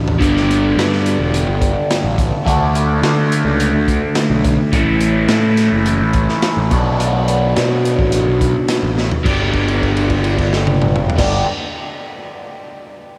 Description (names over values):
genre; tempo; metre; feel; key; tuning
psychedelic rock; 106 BPM; 4/4; straight; G lydian; A4 = 440 Hz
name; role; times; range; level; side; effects
crunchy overdriven guitar; riff; 0.0-11.5 s; G2 to G4; -19 LUFS; equal; phaser
fuzz picked electric bass; bass; 0.0-11.4 s; E1 to D3; -20 LUFS; equal; overdrive
crunchy breakbeat drum kit; drums; 0.1-11.3 s; crash cymbal, hi-hat, kick drum, snare drum, toms; -22 LUFS; equal; none
room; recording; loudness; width
moderate huge ambient reverb, RT60 7.6 s; dreamy mix soaked in reverb; -15 LUFS; mono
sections
0.0-9.3 A section; 9.3-11.5 B section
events
drum fill 0.0, 9.0; held note 9.3-11.2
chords
0.2 G; 2.5 D; 4.7 A; 6.7 Bm7; 9.3 G